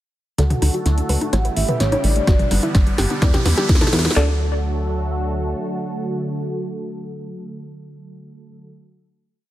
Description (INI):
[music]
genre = progressive house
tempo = 127 BPM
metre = 4/4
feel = straight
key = D major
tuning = A4 = 438 Hz
[part]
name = soft octave-layered synth lead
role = melody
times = 0.4-3.0 s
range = C#5 to F#5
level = -26 LUFS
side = right 2 dB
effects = chorus, phaser, sidechain pumping, digital delay
[part]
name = filtered supersaw swell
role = sustained chords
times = 0.4-8.7 s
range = C#3 to F#5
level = -27 LUFS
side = right 1 dB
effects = sidechain pumping
[part]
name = soft round pluck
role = arpeggios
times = 0.4-8.9 s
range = G3 to C#5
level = -26 LUFS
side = equal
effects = chorus, cassette tape, sidechain pumping, digital delay
[part]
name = wide unison pluck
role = stabs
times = 0.4-8.9 s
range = D3 to D5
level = -28 LUFS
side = left 2 dB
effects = wide subtle chorus, sidechain pumping, digital delay
[part]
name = plucky analog bass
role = bass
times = 0.4-5.5 s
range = G1 to E2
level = -20 LUFS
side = equal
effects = sidechain pumping
[part]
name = deep house drum kit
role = drums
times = 0.4-4.2 s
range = hi-hat, snare drum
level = -24 LUFS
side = equal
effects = overdrive, studio reverb
[part]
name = riser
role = sound effects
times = 1.7-4.2 s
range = none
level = -30 LUFS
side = right 1 dB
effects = none
[part]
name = electronic toms and congas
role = percussion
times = 0.5-3.9 s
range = none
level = -26 LUFS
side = left 2 dB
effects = overdrive, sidechain pumping on toms, studio reverb, sidechain pumping on perc
[part]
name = deep house drum kit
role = drums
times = 2.3-4.3 s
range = handclaps, kick drum, snare drum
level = -17 LUFS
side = equal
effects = overdrive, studio reverb
[sound]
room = light reverb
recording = none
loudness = -17 LUFS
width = side -14 dB against mid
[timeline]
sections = 0.4-4.2 build; 4.2-7.9 final chord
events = build-up 0.4-4.2; drum fill 0.4-4.2; filter sweep on synth pluck 0.4-4.2; filter sweep on soft synth lead 0.4-4.2; riser 1.7-4.2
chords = 0.4 D; 1.3 A7; 2.3 Gmaj7; 3.2 Em7; 4.2 D